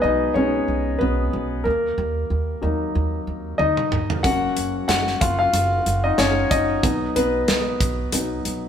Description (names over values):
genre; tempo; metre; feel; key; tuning
piano-driven pop; 93 BPM; 4/4; swing 56% on 16ths; F# major; A4 = 440 Hz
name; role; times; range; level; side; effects
warm concert grand piano; accompaniment; 0.0-8.7 s; F#3 to F#5; -21 LUFS; left 2 dB; none
upright bass; bass; 0.0-8.7 s; F#1 to D#2; -26 LUFS; right 1 dB; none
modern studio drum kit; drums; 3.6-8.6 s; hi-hat, kick drum, snare drum, toms; -23 LUFS; right 1 dB; none
room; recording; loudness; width
moderate stone room reverb, RT60 1.5 s; band playing live in one room; -19 LUFS; side -8 dB against mid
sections
0.0-8.7 A section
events
grand piano solo 0.0-8.7; drum fill 3.6-4.2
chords
0.0 G#m/B; 1.7 D#m; 4.2 F#; 6.8 B